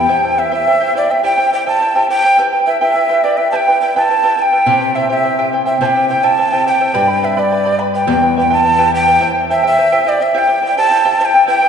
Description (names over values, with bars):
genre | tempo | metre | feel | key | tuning
andean folk | 105 BPM | 2/4 | straight | unclear | A4 = 443 Hz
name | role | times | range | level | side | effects
breathy mellow quena | melody | 0.0-11.7 s | D5 to B5 | -13 LUFS | equal | none
charango | accompaniment | 0.0-11.7 s | E4 to B5 | -16 LUFS | right 2 dB | none
nylon-string guitar | accompaniment | 0.0-0.1, 4.7-9.2 s | E2 to C3 | -21 LUFS | left 4 dB | none
room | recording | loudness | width
wet church reverb, RT60 3.3 s | recorded in a church or concert hall, nothing above 10.6 kHz | -11 LUFS | side -7 dB against mid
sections
0.1-9.2 A section; 9.2-11.7 A section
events
none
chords
0.1 C; 2.4 Em; 4.7 C; 6.9 G; 8.1 Em; 9.2 C